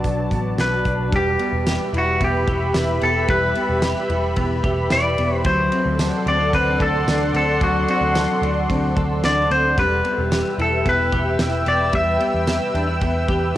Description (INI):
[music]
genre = dream pop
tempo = 111 BPM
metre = 4/4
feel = straight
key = E minor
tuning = A4 = 440 Hz
[part]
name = lush unison pad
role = sustained chords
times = 0.0-13.6 s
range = F#4 to E6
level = -25 LUFS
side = right 1 dB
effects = chorus
[part]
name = semi-hollow electric guitar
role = arpeggios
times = 0.0-13.6 s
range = F#3 to A4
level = -25 LUFS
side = left 1 dB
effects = ensemble chorus, analog delay
[part]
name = vintage muted picked electric bass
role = bass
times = 0.0-13.5 s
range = E1 to E2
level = -24 LUFS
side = equal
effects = none
[part]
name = loose indie drum kit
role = drums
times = 0.0-13.4 s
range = hi-hat, kick drum, ride cymbal, snare drum, tambourine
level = -26 LUFS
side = equal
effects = cassette tape
[part]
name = clean electric guitar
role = melody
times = 0.6-13.0 s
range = F#4 to E5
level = -21 LUFS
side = left 1 dB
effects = cassette tape, analog delay
[sound]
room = light reverb, small room reverb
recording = home recording on cassette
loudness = -17 LUFS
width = side -13 dB against mid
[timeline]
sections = 0.0-1.1 A section; 1.1-13.6 B section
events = none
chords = 0.0 Bm; 1.1 Em; 5.4 D7; 9.8 Em